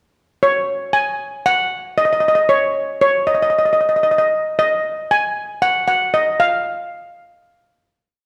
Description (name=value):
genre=calypso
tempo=116 BPM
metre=4/4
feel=straight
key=unclear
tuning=A4 = 439 Hz
part: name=steel pan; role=solo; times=0.4-8.3 s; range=C#5 to G#5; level=-17 LUFS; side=equal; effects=none
room=wet recital hall reverb, RT60 1.5 s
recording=none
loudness=-17 LUFS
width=mono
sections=0.4-8.3 verse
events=fade-out 6.7-8.3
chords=none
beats=| 0.42 0.94 1.46 1.98 | 2.50 3.02 3.54 4.06 | 4.58 5.10 5.62 6.14 | 6.65 7.17 7.69 8.20